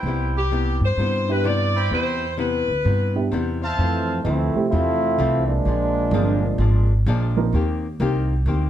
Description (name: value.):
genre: jazz, big band swing.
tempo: 128 BPM.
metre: 4/4.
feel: swing 66% on 8ths.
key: C major.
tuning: A4 = 440 Hz.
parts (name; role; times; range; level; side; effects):
bright trumpet section; stabs; 0.0-4.2 s; E4 to B5; -27 LUFS; right 2 dB; none.
upright bass; bass; 0.0-8.7 s; G1 to G2; -21 LUFS; equal; none.
archtop guitar, miked and amplified; accompaniment; 0.1-8.7 s; F2 to G4; -28 LUFS; left 5 dB; none.
clear saxophone section; melody; 0.4-3.3 s; G4 to D5; -24 LUFS; left 2 dB; plate reverb.
dark baby grand piano; accompaniment; 1.3-7.5 s; C3 to Bb4; -25 LUFS; right 6 dB; none.
warm trombone section; second line; 3.8-6.9 s; E3 to F4; -22 LUFS; right 1 dB; none.
room: light reverb.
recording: dark, warm production.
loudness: -18 LUFS.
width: side -11 dB against mid.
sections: 0.0-3.8 A section; 3.8-8.7 B section.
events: trombone section solo 3.8-8.7.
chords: 0.0 Cmaj7; 3.8 Fmaj7; 5.7 Bb7; 7.5 Eb6.